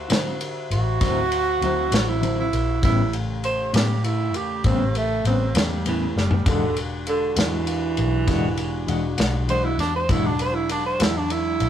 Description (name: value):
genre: slow blues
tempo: 66 BPM (dotted quarters)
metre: 12/8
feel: straight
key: unclear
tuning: A4 = 441 Hz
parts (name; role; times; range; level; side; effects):
- breathy tenor saxophone; second line; 0.0-11.7 s; D3 to C5; -24 LUFS; right 4 dB; none
- mellow tonewheel organ; sustained chords; 0.0-11.7 s; C#3 to E5; -33 LUFS; left 2 dB; slow rotary speaker
- vintage muted fingered electric bass; bass; 0.0-11.7 s; E1 to D3; -26 LUFS; left 1 dB; none
- mellow electric guitar; accompaniment; 0.1-11.2 s; A2 to F#4; -27 LUFS; left 3 dB; tremolo
- warm soul drum kit; drums; 0.1-11.7 s; kick drum, ride cymbal, snare drum, toms; -25 LUFS; left 1 dB; none
room: moderate small room reverb, RT60 0.5 s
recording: rough rehearsal-room recording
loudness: -20 LUFS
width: side -10 dB against mid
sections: 0.0-11.7 A section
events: tenor saxophone solo 0.0-11.7; drum fill 6.2-6.5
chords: 0.0 D9; 2.8 A9; 6.5 E9